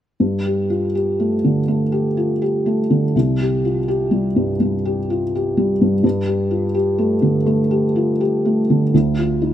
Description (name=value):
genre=classical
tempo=82 BPM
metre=4/4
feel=rubato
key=unclear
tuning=A4 = 440 Hz
part: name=felt-muted upright piano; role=accompaniment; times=0.2-9.5 s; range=C2 to G4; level=-16 LUFS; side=equal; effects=none
room=light reverb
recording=none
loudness=-16 LUFS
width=side -11 dB against mid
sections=0.2-9.5 A section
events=none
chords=0.2 Gsus2; 3.1 C5; 6.0 Gsus2; 8.9 Dm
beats=| 0.19 0.93 1.66 2.40 | 3.14 3.87 4.59 5.32 | 6.04 6.76 7.47 8.20 | 8.92